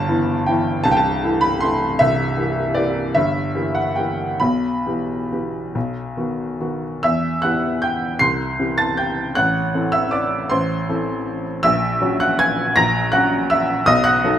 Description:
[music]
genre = classical, piano waltz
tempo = 128-173 BPM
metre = 3/4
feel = rubato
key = E minor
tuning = A4 = 441 Hz
[part]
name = warm upright piano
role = solo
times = 0.0-14.4 s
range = C1 to C7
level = -17 LUFS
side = equal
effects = none
[sound]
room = light reverb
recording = none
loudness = -17 LUFS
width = side -10 dB against mid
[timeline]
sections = 0.0-7.0 A section; 7.0-14.4 B section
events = none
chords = 0.0 Em/G; 0.9 Am/C; 2.0 C7; 4.4 Em/B; 5.7 B; 7.0 Em; 8.2 C; 9.4 Am; 11.6 F#7/A#; 13.9 B7

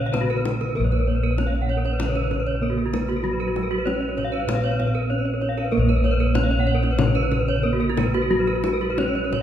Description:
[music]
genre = Balinese gamelan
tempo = 95 BPM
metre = 4/4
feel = uneven beats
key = Bb pelog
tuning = A4 = 440 Hz
[part]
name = gamelan-type bronze metallophone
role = melody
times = 0.0-9.4 s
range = Gb3 to Db4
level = -29 LUFS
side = right 3 dB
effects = none
[part]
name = gamelan-type bronze metallophone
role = accompaniment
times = 0.0-9.4 s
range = Db3 to Cb4+35c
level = -31 LUFS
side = right 2 dB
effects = none
[part]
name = gamelan-type bronze metallophone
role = arpeggios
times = 0.0-9.2 s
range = Gb4 to F5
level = -27 LUFS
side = left 4 dB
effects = none
[part]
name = gamelan-type bossed gongs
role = bass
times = 0.0-9.4 s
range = Bb1 to Bb4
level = -24 LUFS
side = equal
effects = none
[part]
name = gamelan-type bronze metallophone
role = arpeggios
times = 0.1-9.4 s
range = F4 to Gb5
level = -28 LUFS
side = right 5 dB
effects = none
[part]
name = kendang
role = percussion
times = 0.1-9.4 s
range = none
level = -29 LUFS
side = left 4 dB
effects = none
[sound]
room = wet recital hall reverb, RT60 1.7 s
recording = recorded in a church or concert hall, lossy compression artefacts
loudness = -20 LUFS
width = side -10 dB against mid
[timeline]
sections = 0.8-9.4 A section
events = none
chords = none

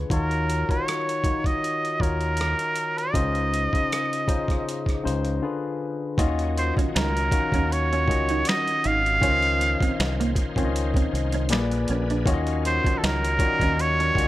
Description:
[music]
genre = R&B, neo-soul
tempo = 79 BPM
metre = 4/4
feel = swing 55% on 16ths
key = Eb dorian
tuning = A4 = 440 Hz
[part]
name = barky tine electric piano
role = accompaniment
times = 0.0-14.3 s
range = Bb2 to Gb5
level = -28 LUFS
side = left 5 dB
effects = overdrive, wide subtle chorus
[part]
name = deep dub fingered electric bass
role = bass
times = 0.0-14.3 s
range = Ab1 to Eb2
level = -26 LUFS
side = equal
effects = none
[part]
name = trumpet with straight mute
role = melody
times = 0.1-14.3 s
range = A4 to F5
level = -25 LUFS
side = right 2 dB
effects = none
[part]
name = boom bap sampler-style drum kit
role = drums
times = 0.1-14.3 s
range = finger snaps, hi-hat, kick drum, rim click, snare drum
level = -26 LUFS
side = equal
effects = none
[part]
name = clean electric guitar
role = second line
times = 6.2-14.2 s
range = Bb3 to Eb4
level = -32 LUFS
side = right 5 dB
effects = ensemble chorus
[part]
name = bright tonewheel organ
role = sustained chords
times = 6.2-14.3 s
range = D3 to F5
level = -38 LUFS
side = right 2 dB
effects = none
[sound]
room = light reverb, digital ambience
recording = none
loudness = -21 LUFS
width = side -15 dB against mid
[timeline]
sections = 0.0-6.2 A section; 6.2-14.3 B section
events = break 5.4-6.2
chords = 0.1 Ebm9; 3.1 Dbmaj9; 5.4 Ddim7; 6.2 Ebm9; 9.2 Dbmaj9; 11.5 Bb7b9; 12.3 Ebm9

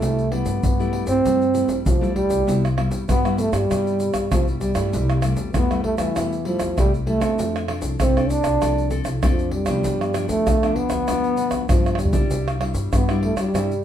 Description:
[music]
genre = samba and choro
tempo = 98 BPM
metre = 4/4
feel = straight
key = C major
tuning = A4 = 440 Hz
[part]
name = breathy trombone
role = melody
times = 0.0-13.8 s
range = E3 to D4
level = -22 LUFS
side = right 1 dB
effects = none
[part]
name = nylon-string guitar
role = accompaniment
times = 0.0-13.8 s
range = G2 to A4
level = -28 LUFS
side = left 3 dB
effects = none
[part]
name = upright bass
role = bass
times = 0.0-13.8 s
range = C2 to G2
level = -25 LUFS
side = left 1 dB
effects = none
[part]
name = tube shaker, surdo, pandeiro and tamborim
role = percussion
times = 0.0-13.8 s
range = none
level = -23 LUFS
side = equal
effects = none
[sound]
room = moderate studio reverb, RT60 0.7 s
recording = band playing live in one room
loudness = -18 LUFS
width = side -10 dB against mid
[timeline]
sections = 0.0-2.5 A section; 2.5-13.8 A section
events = drum fill 11.9-12.3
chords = 0.0 C6; 2.5 Cmaj7; 4.9 Am7/C; 7.4 F6; 9.9 G7; 12.3 Cadd9

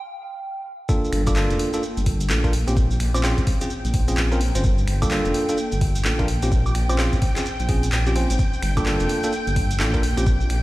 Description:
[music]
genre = UK garage, two-step garage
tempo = 128 BPM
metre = 4/4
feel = swing 62% on 16ths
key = G minor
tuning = A4 = 438 Hz
[part]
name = soft synth bell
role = melody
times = 0.0-0.8 s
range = G5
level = -36 LUFS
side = right 3 dB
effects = chorus, phaser, dub echo
[part]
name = soft string machine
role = sustained chords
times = 0.0-10.6 s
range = F5 to G5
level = -33 LUFS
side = equal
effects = ensemble chorus, sidechain pumping
[part]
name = bell-like tine electric piano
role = stabs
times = 0.9-10.3 s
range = Bb3 to C5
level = -25 LUFS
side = equal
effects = dub echo
[part]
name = electronic kick drum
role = drums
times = 0.9-10.4 s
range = none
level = -22 LUFS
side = equal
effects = overdrive
[part]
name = maracas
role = percussion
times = 0.9-10.5 s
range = none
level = -36 LUFS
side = right 2 dB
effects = none
[part]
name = dark detuned saw bass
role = bass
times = 1.1-10.6 s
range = F1 to Bb1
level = -22 LUFS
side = equal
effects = none
[part]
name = punchy analog drum machine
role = drums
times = 1.1-10.6 s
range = finger snaps, handclaps, hi-hat, woodblock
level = -29 LUFS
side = equal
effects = overdrive
[sound]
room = light reverb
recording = played on a big sound system in a bare room, stone room reverb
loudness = -19 LUFS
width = side -17 dB against mid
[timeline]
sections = 0.9-10.6 A section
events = drop 0.9-10.6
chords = 0.0 N.C.; 0.9 Gm9; 2.5 Bbm9; 4.6 Gm9; 6.3 Bbm9; 8.4 Gm9; 10.0 Bbmadd9

